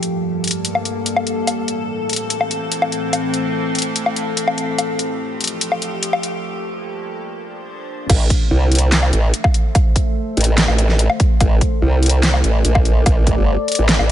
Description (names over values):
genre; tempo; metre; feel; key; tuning
heavy wobble dubstep; 145 BPM; 4/4; half-time; A phrygian; A4 = 440 Hz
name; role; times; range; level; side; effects
evolving wavetable pad; sustained chords; 0.0-14.1 s; F2 to E5; -23 LUFS; left 1 dB; chorus, built-in reverb, sidechain pumping
dubstep drum kit; drums; 0.0-14.1 s; crash cymbal, handclaps, hi-hat, snare drum, woodblock; -20 LUFS; left 1 dB; overdrive
formant-sweep wobble bass; bass; 8.1-14.1 s; G1 to C2; -15 LUFS; equal; chorus, overdrive
electronic kick drum; drums; 8.1-13.4 s; none; -15 LUFS; equal; overdrive
room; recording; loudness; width
light reverb, digital ambience; high-pass filter, nothing above 11.0 kHz; -15 LUFS; side -11 dB against mid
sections
0.0-8.1 A section; 8.1-14.1 B section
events
build-up 0.0-8.1; break 6.4-8.1; drop 8.1-14.1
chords
0.0 Gmadd9; 1.5 Am; 4.8 Fadd9; 6.4 Gmadd9; 7.3 Bbadd9; 8.1 Am